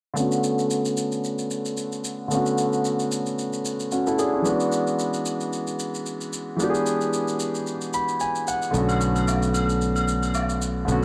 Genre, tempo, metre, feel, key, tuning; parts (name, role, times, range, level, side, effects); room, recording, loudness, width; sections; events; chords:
amapiano; 112 BPM; 4/4; swing 55% on 16ths; B dorian; A4 = 435 Hz
warm concert grand piano; accompaniment; 0.1-11.0 s; D3 to B5; -26 LUFS; equal; low-pass filter
shaker; drums; 0.2-11.0 s; -37 LUFS; equal
fingered electric bass; bass; 8.7-11.0 s; B1; -26 LUFS; equal
agogo bells and woodblock; percussion; 8.9-10.5 s; -31 LUFS; equal
light reverb, small room ambience; dark, warm production; -25 LUFS; mono
0.2-11.0 A section
filter sweep on grand piano 0.2-11.0; grand piano fill 7.7-8.7
0.2 Bm9; 4.5 E7; 8.7 Bm9